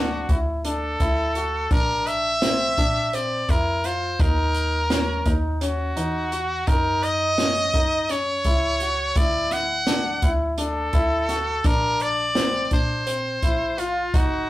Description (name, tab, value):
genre	progressive instrumental, band music in an uneven meter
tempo	169 BPM (eighths)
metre	7/8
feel	straight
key	unclear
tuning	A4 = 444 Hz
part	brilliant trumpet	melody	0.0-14.5 s	E#4 to F#5	-24 LUFS	equal	none
part	warm baby grand piano	arpeggios	0.0-14.5 s	B#3 to F#4	-27 LUFS	left 1 dB	none
part	plucky analog bass	bass	0.0-14.5 s	F#1 to F#2	-28 LUFS	equal	none
part	open jazz drum kit	drums	0.3-14.3 s	hi-hat, kick drum, snare drum	-23 LUFS	equal	none
room	wet studio reverb, RT60 0.6 s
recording	rough rehearsal-room recording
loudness	-20 LUFS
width	side -16 dB against mid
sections	0.0-14.5 A section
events	none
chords	0.0 D; 1.7 A#add9; 4.2 D#m; 6.7 F#5; 9.2 D; 11.7 A#add9